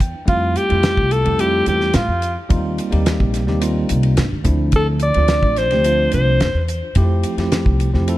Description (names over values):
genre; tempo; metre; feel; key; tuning
electric jazz fusion; 108 BPM; 4/4; straight; F major; A4 = 440 Hz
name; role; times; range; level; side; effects
bell-like tine electric piano; accompaniment; 0.0-8.2 s; F3 to G5; -22 LUFS; right 1 dB; fast stereo tremolo
upright bass; bass; 0.0-8.2 s; A1 to A2; -18 LUFS; equal; none
damped 70s drum kit; drums; 0.0-8.2 s; hi-hat, kick drum, ride cymbal, snare drum; -21 LUFS; equal; none
bright alto saxophone; melody; 0.3-6.7 s; F4 to D5; -19 LUFS; equal; tape echo
room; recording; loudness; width
light reverb, studio reverb; dark, warm production; -15 LUFS; side -16 dB against mid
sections
0.0-8.2 A section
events
tine electric piano fill 0.0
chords
0.3 Fmaj9; 2.5 Eb69; 4.5 Dm9; 7.0 Fmaj9